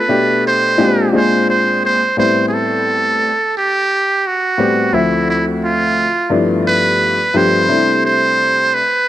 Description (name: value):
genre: hip hop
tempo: 87 BPM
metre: 4/4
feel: swing 62% on 16ths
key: unclear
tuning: A4 = 440 Hz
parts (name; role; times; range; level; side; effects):
- trumpet with metal mute; melody; 0.0-9.1 s; E4 to C5; -14 LUFS; right 2 dB; plate reverb, tape echo
- warm upright piano; accompaniment; 0.1-8.8 s; D2 to E5; -15 LUFS; left 2 dB; plate reverb
room: moderate studio reverb, RT60 0.6 s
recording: dark, warm production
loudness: -12 LUFS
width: side -12 dB against mid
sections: 0.0-2.2 A section; 2.2-9.1 B section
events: muted trumpet solo 0.0-2.2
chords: 0.0 Bm7; 0.8 Bb13; 2.2 Am9; 4.9 Dm9; 6.3 G13; 7.7 C69